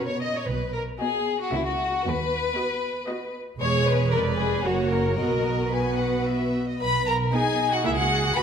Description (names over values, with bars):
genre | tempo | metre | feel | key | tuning
quick classical-period movement for string orchestra | 115 BPM | 3/4 | straight | B major | A4 = 440 Hz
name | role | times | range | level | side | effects
rich chamber violin section | melody | 0.0-8.4 s | C#5 to B5 | -28 LUFS | left 3 dB | none
rich chamber violin section | second line | 0.0-8.4 s | E4 to D#5 | -26 LUFS | left 3 dB | none
clear studio viola section | accompaniment | 0.0-7.9 s | G#3 to Cb5 | -29 LUFS | right 2 dB | none
warm chamber cello section | bass | 0.0-8.4 s | D#2 to G#4 | -31 LUFS | right 3 dB | none
warm chamber double bass section | bass | 0.5-8.4 s | E1 to D#2 | -29 LUFS | right 3 dB | none
room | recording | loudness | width
wet recital hall reverb, RT60 1.6 s | none | -22 LUFS | side -7 dB against mid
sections
0.0-6.8 A section; 6.8-8.4 B section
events
none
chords
0.5 B; 1.5 F#7/C#; 2.1 B/D#; 3.6 C#m/E; 4.1 Fdim7; 4.6 F#; 5.2 B; 7.8 F#7(no3)/C#